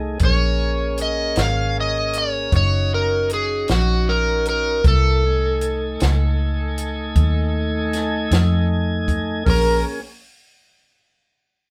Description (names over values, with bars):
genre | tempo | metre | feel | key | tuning
slow blues | 52 BPM (dotted quarters) | 12/8 | straight | Bb minor | A4 = 442 Hz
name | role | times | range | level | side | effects
tonewheel organ | sustained chords | 0.0-10.0 s | A3 to G#5 | -29 LUFS | equal | slow rotary speaker
vintage muted fingered electric bass | bass | 0.0-9.8 s | Gb1 to F2 | -23 LUFS | equal | none
overdriven slide guitar | melody | 0.2-9.8 s | Gb4 to F5 | -25 LUFS | equal | none
compact cocktail drum kit | drums | 0.2-9.6 s | hi-hat, kick drum, snare drum | -24 LUFS | equal | none
overdriven harmonica | second line | 9.5-9.8 s | Bb4 | -25 LUFS | equal | none
room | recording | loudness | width
moderate studio reverb, RT60 0.6 s | band playing live in one room | -20 LUFS | mono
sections
0.0-9.5 A section; 9.5-11.7 B section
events
none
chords
0.2 Bbm7; 2.5 Ebm7; 4.8 F7#9; 9.5 Bbm7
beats
| 0.21 1.37 2.53 3.69 | 4.84 6.00 7.16 8.31 | 9.46